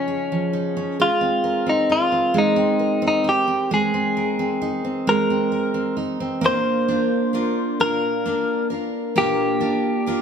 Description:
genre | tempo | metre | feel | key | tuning
six-eight pop ballad | 44 BPM (dotted quarters) | 6/8 | straight | unclear | A4 = 440 Hz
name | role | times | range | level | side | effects
direct-recorded clean electric guitar | melody | 0.0-10.2 s | Db4 to C5 | -21 LUFS | equal | none
picked steel-string acoustic guitar | accompaniment | 0.0-10.2 s | Db3 to Bb4 | -23 LUFS | right 2 dB | none
picked steel-string acoustic guitar | arpeggios | 6.4-10.2 s | Bb2 to Bb4 | -26 LUFS | left 8 dB | none
room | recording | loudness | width
moderate studio reverb, RT60 0.9 s | band playing live in one room | -18 LUFS | side -7 dB against mid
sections
0.0-6.4 A section; 6.4-10.2 B section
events
none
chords
0.0 Dbadd9; 1.0 Abadd9; 6.4 Bb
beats
| 1.00 2.37 | 3.72 5.08 | 6.44 7.80 | 9.16

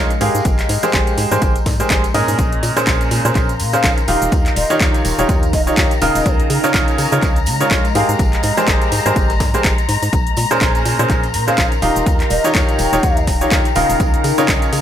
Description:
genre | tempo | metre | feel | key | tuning
piano house | 124 BPM | 4/4 | swing 57% on 16ths | unclear | A4 = 440 Hz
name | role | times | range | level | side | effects
clear baby grand piano | riff | 0.0-14.8 s | Bb2 to F5 | -18 LUFS | right 1 dB | sidechain pumping, dub echo
organ-like FM bass | bass | 0.0-14.8 s | Eb1 to Db3 | -21 LUFS | equal | sidechain pumping
warbly tape-like pad | texture | 0.1-14.8 s | Ab3 to C6 | -25 LUFS | left 1 dB | chorus, built-in reverb, phaser, sidechain pumping
house drum kit | drums | 0.1-14.8 s | handclaps, hi-hat, shaker | -22 LUFS | equal | overdrive
tambourine | percussion | 0.1-14.8 s | none | -33 LUFS | right 3 dB | none
breakbeat sampler-style drum kit | drums | 0.2-14.8 s | hi-hat, snare drum | -31 LUFS | left 1 dB | none
electronic kick drum | drums | 0.5-14.6 s | none | -17 LUFS | equal | none
dark chamber string section | sustained chords | 2.4-14.8 s | Bb5 | -25 LUFS | left 6 dB | sidechain pumping
mellow hollow concert flute | melody | 3.7-6.3, 11.5-13.3 s | Eb5 to G5 | -24 LUFS | left 1 dB | dub echo
room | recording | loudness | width
little or no reverb | none | -13 LUFS | side -10 dB against mid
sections
0.0-14.8 A section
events
none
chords
0.2 Abmaj9; 2.4 Bbm9; 4.1 Eb9; 6.3 Db69; 8.0 Abmaj9; 10.1 Bbm9; 11.8 Eb9; 14.0 Db69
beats
| 0.45 0.94 1.42 1.90 | 2.39 2.87 3.35 3.84 | 4.32 4.81 5.29 5.77 | 6.26 6.74 7.23 7.71 | 8.19 8.68 9.16 9.64 | 10.13 10.61 11.10 11.58 | 12.06 12.55 13.03 13.52 | 14.00 14.48

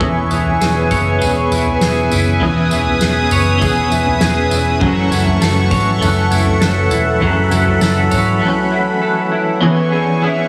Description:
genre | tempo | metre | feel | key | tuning
dream pop | 100 BPM | 4/4 | straight | unclear | A4 = 440 Hz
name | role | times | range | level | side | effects
clean electric guitar | accompaniment | 0.0-10.5 s | F#2 to G#4 | -21 LUFS | equal | tremolo, lush chorus
phased analog pad | sustained chords | 0.0-10.5 s | A4 to D#6 | -22 LUFS | equal | phaser, chorus
electric guitar at the edge of break-up | arpeggios | 0.0-10.5 s | E3 to C#5 | -20 LUFS | equal | analog chorus, tape echo
vintage muted picked electric bass | bass | 0.0-8.4 s | E1 to G#1 | -21 LUFS | equal | none
soft-mallet drum kit | drums | 0.0-8.3 s | kick drum, snare drum, tambourine, toms | -23 LUFS | equal | none
room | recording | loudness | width
moderate lush hall reverb, RT60 2.3 s | heavily compressed radio sound, multiband compression, small room ambience | -15 LUFS | mono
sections
0.0-9.6 A section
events
break 8.4-9.6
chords
0.0 E6; 4.8 F#m7; 9.6 E6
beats
| 0.01 0.61 1.21 1.81 | 2.41 3.01 3.61 4.21 | 4.81 5.41 6.01 6.61 | 7.21 7.81 8.41 9.01 | 9.61 10.21

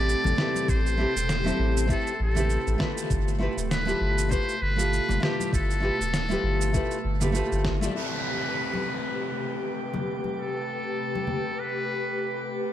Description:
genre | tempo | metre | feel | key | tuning
sunset chillout | 99 BPM | 4/4 | swing 57% on 16ths | A minor | A4 = 440 Hz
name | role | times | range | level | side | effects
trumpet with metal mute | melody | 0.0-12.5 s | G4 to D5 | -31 LUFS | equal | tape echo
nylon-string guitar | accompaniment | 0.0-12.7 s | A3 to D5 | -30 LUFS | moving between left 4 dB and right 2 dB | auto-pan, vintage 12-bit sampler grit, dub echo
airy breathy pad | sustained chords | 0.0-12.7 s | B2 to B4 | -33 LUFS | equal | chorus
round analog bass | bass | 0.0-7.9 s | D1 to A1 | -27 LUFS | equal | none
electronic cabasa and snare drum | drums | 0.1-7.9 s | none | -32 LUFS | right 1 dB | overdrive, low-pass filter on perc, low-pass filter on snare, low-pass filter on room, analog delay
congas | percussion | 0.2-11.4 s | none | -34 LUFS | left 4 dB | analog delay
electronic kick drum | drums | 0.7-7.8 s | none | -28 LUFS | equal | overdrive
drifting glass-harmonics texture | texture | 9.1-12.7 s | G4 to G5 | -40 LUFS | right 3 dB | chorus, built-in reverb
downlifter | sound effects | 8.0-12.7 s | none | -36 LUFS | equal | none
room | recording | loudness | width
moderate spring reverb, RT60 1.8 s, digital ambience | echo-heavy mix | -24 LUFS | side -11 dB against mid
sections
0.0-8.0 A section; 8.0-12.7 B section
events
none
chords
0.0 Am9; 3.1 G13; 8.0 Am9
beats
0.08 | 0.68 1.29 1.90 2.50 | 3.11 3.71 4.32 4.92 | 5.53 6.14 6.74 7.35 | 7.96 8.56 9.17 9.77 | 10.38 10.99 11.59 12.20

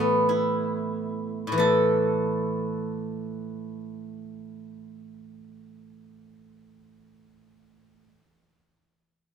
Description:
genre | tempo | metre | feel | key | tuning
chinese traditional, Chinese solo plucked strings | 44 BPM | 2/4 | rubato | unclear | A4 = 440 Hz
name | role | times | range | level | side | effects
steel-string zither | solo | 0.0-8.2 s | A2 to E5 | -25 LUFS | right 1 dB | none
room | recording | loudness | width
light reverb | minimal, uncompressed stereo recording | -24 LUFS | side -7 dB against mid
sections
0.0-1.6 A section; 1.6-7.1 B section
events
slowing down 0.0-1.6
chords
none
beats
0.30 | 1.58 2.98 | 4.34 5.72

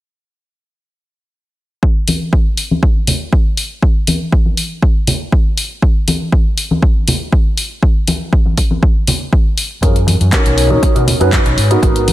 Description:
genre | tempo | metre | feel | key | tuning
filtered disco house | 120 BPM | 4/4 | straight | unclear | A4 = 439 Hz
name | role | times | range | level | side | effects
electronic kick drum | drums | 1.8-11.9 s | none | -12 LUFS | equal | none
maracas and congas | percussion | 1.8-12.1 s | none | -18 LUFS | left 1 dB | sidechain pumping on perc, low-pass filter on perc
house drum kit | drums | 2.1-12.1 s | handclaps, hi-hat | -19 LUFS | left 2 dB | sidechain pumping on hats
warm grand piano | accompaniment | 9.8-12.1 s | B3 to B4 | -15 LUFS | right 1 dB | phaser, sidechain pumping, low-pass filter
overdriven fingered electric bass | bass | 9.8-12.1 s | G#1 to B2 | -14 LUFS | equal | sidechain pumping, low-pass filter
room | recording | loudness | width
little or no reverb | none | -11 LUFS | side -15 dB against mid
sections
1.8-12.1 A section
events
filter sweep 1.8-12.1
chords
1.8 N.C.; 9.8 F#maj7; 10.6 Bmaj9; 11.6 G#m9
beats
| 1.83 2.33 2.83 3.33 | 3.83 4.33 4.83 5.33 | 5.83 6.33 6.83 7.33 | 7.83 8.33 8.83 9.33 | 9.83 10.33 10.83 11.33 | 11.83

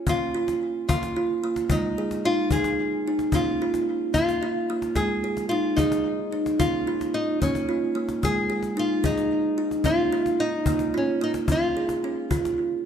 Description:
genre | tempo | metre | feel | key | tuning
world meditative, meditative tuned percussion | 74 BPM (dotted quarters) | 6/8 | straight | unclear | A4 = 438 Hz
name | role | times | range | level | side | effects
nylon-string guitar | melody | 0.0-12.8 s | Db4 to Ab4 | -27 LUFS | left 1 dB | tape echo
kalimba | arpeggios | 0.0-12.9 s | Ab3 to Ab4 | -25 LUFS | right 2 dB | tape echo
cajon | percussion | 0.1-12.7 s | none | -28 LUFS | left 2 dB | none
room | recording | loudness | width
wet echo chamber reverb, RT60 1.6 s, studio ambience | none | -22 LUFS | side -8 dB against mid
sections
0.1-12.9 A section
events
none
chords
0.1 Bbm; 1.7 Ab5; 3.3 Bbm; 5.0 Ab5; 6.6 Bbm; 8.2 Ab5; 9.9 Bbm; 11.5 Db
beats
| 0.07 0.89 | 1.70 2.52 | 3.33 4.15 | 4.97 5.78 | 6.60 7.42 | 8.23 9.05 | 9.86 10.68 | 11.49 12.31

